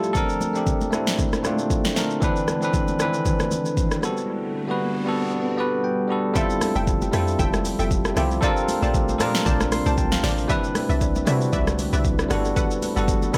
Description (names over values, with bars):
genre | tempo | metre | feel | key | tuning
amapiano | 116 BPM | 4/4 | swing 55% on 16ths | F major | A4 = 440 Hz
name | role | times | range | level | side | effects
bell-like tine electric piano | accompaniment | 0.0-13.4 s | Eb3 to C6 | -26 LUFS | equal | none
deep dark ambient pad | sustained chords | 0.0-13.4 s | Bb2 to A5 | -33 LUFS | equal | chorus, built-in reverb, sidechain pumping
deep house drum kit | drums | 0.0-13.4 s | hi-hat, kick drum, rim click, shaker, snare drum | -27 LUFS | equal | dub echo
congas | percussion | 0.2-13.4 s | none | -34 LUFS | equal | none
riser | sound effects | 3.9-5.3 s | none | -38 LUFS | equal | none
punchy chord stab | stabs | 6.4-13.4 s | A4 to A5 | -33 LUFS | equal | chorus, dub echo
deep log drum bass | bass | 6.8-13.4 s | F1 to C3 | -27 LUFS | equal | none
room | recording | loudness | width
little or no reverb | echo-heavy mix | -22 LUFS | mono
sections
0.0-6.4 A section; 6.4-13.4 B section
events
riser 3.9-6.4; tine electric piano fill 5.3-6.4, 9.5-10.5; drop 6.4-13.4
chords
0.2 Bbmaj9; 2.2 Cmaj9; 4.0 Gmaj9; 6.4 Fmaj9; 8.4 Bbmaj9; 10.5 Cmaj9; 12.3 Gmaj9